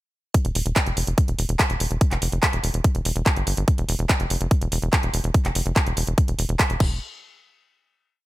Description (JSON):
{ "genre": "psychedelic trance", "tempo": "144 BPM", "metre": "4/4", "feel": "straight", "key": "E phrygian", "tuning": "A4 = 440 Hz", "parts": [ { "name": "electronic kick drum", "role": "drums", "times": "0.3-6.9 s", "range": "none", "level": "-20 LUFS", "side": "equal", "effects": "overdrive" }, { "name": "techno drum kit", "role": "drums", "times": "0.3-6.9 s", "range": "crash cymbal, handclaps, hi-hat", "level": "-26 LUFS", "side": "right 1 dB", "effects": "none" }, { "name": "tight sequencer bass", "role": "bass", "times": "0.4-7.0 s", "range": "E1 to G1", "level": "-24 LUFS", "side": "equal", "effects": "tube saturation" } ], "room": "little or no reverb", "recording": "none", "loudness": "-20 LUFS", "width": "side -17 dB against mid", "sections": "0.3-7.0 drop; 7.0-8.2 final hit", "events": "drop 0.3-7.0", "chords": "none", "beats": "| 0.34 0.76 1.18 1.59 | 2.01 2.43 2.84 3.26 | 3.68 4.09 4.51 4.93 | 5.34 5.76 6.18 6.59" }